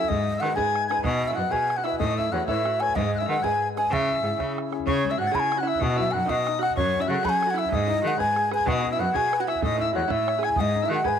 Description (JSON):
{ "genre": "celtic folk, Celtic jig", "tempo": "126 BPM (dotted quarters)", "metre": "6/8", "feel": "straight", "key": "C# minor", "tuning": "A4 = 440 Hz", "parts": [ { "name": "mellow hollow wooden flute", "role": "melody", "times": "0.0-11.2 s", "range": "C#5 to B5", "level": "-25 LUFS", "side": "equal", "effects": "none" }, { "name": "hollow tin whistle", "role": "second line", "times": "0.0-11.2 s", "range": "C#6 to A6", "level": "-31 LUFS", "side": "left 9 dB", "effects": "none" }, { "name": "open-back banjo", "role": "second line", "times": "0.0-11.2 s", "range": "C#4 to G#4", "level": "-33 LUFS", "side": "right 13 dB", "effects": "none" }, { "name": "warm upright piano", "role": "accompaniment", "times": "0.0-11.2 s", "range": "B2 to D#5", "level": "-31 LUFS", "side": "left 11 dB", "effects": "none" }, { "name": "bodhran", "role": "percussion", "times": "0.0-11.1 s", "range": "none", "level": "-33 LUFS", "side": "right 4 dB", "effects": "none" }, { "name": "clear cello", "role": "bass", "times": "0.1-11.2 s", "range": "E2 to F#3", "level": "-29 LUFS", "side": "right 2 dB", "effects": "none" } ], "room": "moderate plate reverb, RT60 2.4 s", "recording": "1960s-style stereo with parts hard left and right", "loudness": "-22 LUFS", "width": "side -8 dB against mid", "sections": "0.0-4.9 A section; 4.9-11.2 A section", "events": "none", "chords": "0.1 G#m; 1.0 B; 2.0 Aadd9; 3.0 G#m; 3.9 C#m; 5.8 B; 6.8 F#m; 7.7 G#m; 8.7 B5; 9.6 A; 10.6 G#m" }